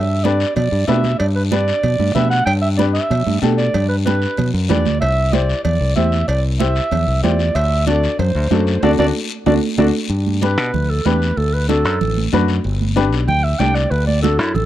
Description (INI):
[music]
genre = latin, cumbia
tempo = 189 BPM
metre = 4/4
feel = straight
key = G major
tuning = A4 = 440 Hz
[part]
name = mellow clarinet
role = melody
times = 0.0-14.7 s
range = E4 to G5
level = -20 LUFS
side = right 2 dB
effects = none
[part]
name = fingered electric bass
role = bass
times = 0.0-14.7 s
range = G1 to B2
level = -18 LUFS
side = equal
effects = none
[part]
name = warm upright piano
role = accompaniment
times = 0.2-14.5 s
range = D4 to D5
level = -22 LUFS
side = left 6 dB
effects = none
[part]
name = congas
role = percussion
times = 0.2-14.7 s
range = none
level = -22 LUFS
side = right 8 dB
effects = none
[part]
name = guiro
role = percussion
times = 0.2-14.7 s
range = none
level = -30 LUFS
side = left 8 dB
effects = none
[part]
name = cowbell and timbales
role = percussion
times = 0.6-9.9 s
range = none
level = -27 LUFS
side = right 5 dB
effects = none
[sound]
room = studio ambience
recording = dry, close 1970s-style studio recording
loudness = -14 LUFS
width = side -13 dB against mid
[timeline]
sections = 0.0-10.1 A section; 10.1-14.7 B section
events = band accent 8.8-10.1; clarinet solo 10.1-14.7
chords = 0.0 G; 5.0 C; 7.6 D7; 10.1 G; 11.4 D; 12.6 G; 13.9 D